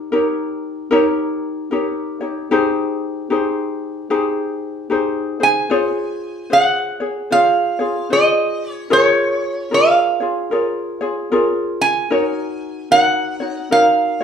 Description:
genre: Hawaiian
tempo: 75 BPM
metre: 4/4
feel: swing 62% on 8ths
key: Ab major, Db major from 5.7 s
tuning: A4 = 439 Hz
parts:
  - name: ukulele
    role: accompaniment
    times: 0.0-14.2 s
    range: Eb4 to Db5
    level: -19 LUFS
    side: left 2 dB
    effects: none
  - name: lap resonator guitar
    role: melody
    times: 5.4-14.2 s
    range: Db5 to Ab5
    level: -15 LUFS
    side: right 2 dB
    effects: none
room: wet large studio reverb, RT60 0.8 s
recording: band playing live in one room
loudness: -15 LUFS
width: side -7 dB against mid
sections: 0.0-5.7 A section; 5.7-14.2 B section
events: none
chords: 0.0 Eb7; 2.5 Abmaj7; 5.7 Dbmaj7; 8.9 Bbm7; 12.1 Ebm7

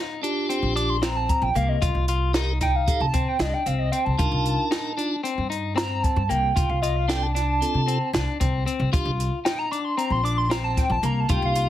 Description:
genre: progressive instrumental, band music in an uneven meter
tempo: 228 BPM (eighths)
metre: 9/8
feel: straight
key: unclear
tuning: A4 = 440 Hz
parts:
  - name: clean electric guitar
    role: arpeggios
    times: 0.0-11.7 s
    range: Bb3 to F4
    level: -29 LUFS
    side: left 5 dB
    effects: slapback echo, plate reverb
  - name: tonewheel organ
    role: accompaniment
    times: 0.2-11.7 s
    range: Bb3 to Bb4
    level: -29 LUFS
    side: right 2 dB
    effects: overdrive, slow rotary speaker, plate reverb
  - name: compact cocktail drum kit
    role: drums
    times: 0.2-11.7 s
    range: hi-hat, kick drum, snare drum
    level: -26 LUFS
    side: equal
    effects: none
  - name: upright bass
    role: bass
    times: 0.6-11.7 s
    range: Bb1 to C3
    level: -25 LUFS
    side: equal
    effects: none
  - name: hollow square lead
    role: melody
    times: 0.8-11.7 s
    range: Eb5 to D6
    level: -26 LUFS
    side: right 1 dB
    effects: chorus, slapback echo
room: moderate small room reverb, RT60 0.5 s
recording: heavily compressed radio sound, multiband compression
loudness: -21 LUFS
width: side -12 dB against mid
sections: 0.0-11.7 A section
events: analog synth lead solo 0.0-11.7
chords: 0.0 Ebmaj7/C (rootless); 1.8 F7sus2/C; 4.2 Cm7; 6.6 Dm7/C; 8.9 Ebmaj7(no3)/C (rootless)

